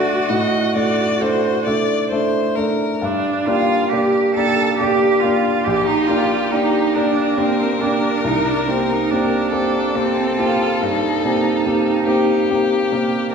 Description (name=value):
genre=classical, slow romantic movement for piano trio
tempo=43-48 BPM (dotted quarters)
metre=12/8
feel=rubato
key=unclear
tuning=A4 = 440 Hz
part: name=rich violin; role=melody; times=0.0-13.3 s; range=G4 to Eb5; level=-23 LUFS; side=left 5 dB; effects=none
part: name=rich cello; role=second line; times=0.0-13.3 s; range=C4 to A4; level=-20 LUFS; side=right 3 dB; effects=none
part: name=clear baby grand piano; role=accompaniment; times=0.0-13.3 s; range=Bb1 to A4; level=-18 LUFS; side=equal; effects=none
room=wet recital hall reverb, RT60 1.3 s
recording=heard from further back in the room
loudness=-15 LUFS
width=side -6 dB against mid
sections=0.0-13.3 A section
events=none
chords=0.0 D; 3.0 Gm; 5.6 Gm/Bb; 8.2 Cm7